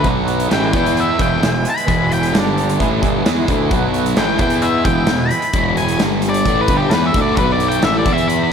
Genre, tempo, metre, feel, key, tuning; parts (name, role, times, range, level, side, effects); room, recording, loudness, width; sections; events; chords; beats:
quiet-loud alternative rock; 131 BPM; 4/4; straight; A4 = 440 Hz
octave-fuzz lead guitar; melody; 0.0-8.5 s; G4 to B5; -20 LUFS; left 3 dB; distortion, slapback echo
twangy electric guitar; arpeggios; 0.0-5.5 s; E2 to D5; -23 LUFS; right 3 dB; tremolo, slapback echo
thick fuzz guitar; riff; 0.0-8.5 s; E2 to E4; -18 LUFS; equal; distortion
fuzz fingered electric bass; bass; 0.0-8.5 s; E1 to E2; -21 LUFS; equal; overdrive
big rock drum kit; drums; 0.0-8.4 s; hi-hat, kick drum, snare drum; -20 LUFS; equal
moderate lush hall reverb, RT60 2.1 s; big arena sound; -13 LUFS; side -7 dB against mid
0.0-8.5 A section
lead electric guitar solo 0.0-8.5
0.0 B5; 0.5 E; 2.3 G5; 2.8 E; 3.7 B5; 4.2 E; 6.0 G5; 6.5 E5; 7.4 B5; 7.8 E5
| 0.05 0.50 0.96 1.42 | 1.88 2.34 2.80 3.25 | 3.71 4.17 4.63 5.09 | 5.54 6.00 6.46 6.92 | 7.38 7.83 8.29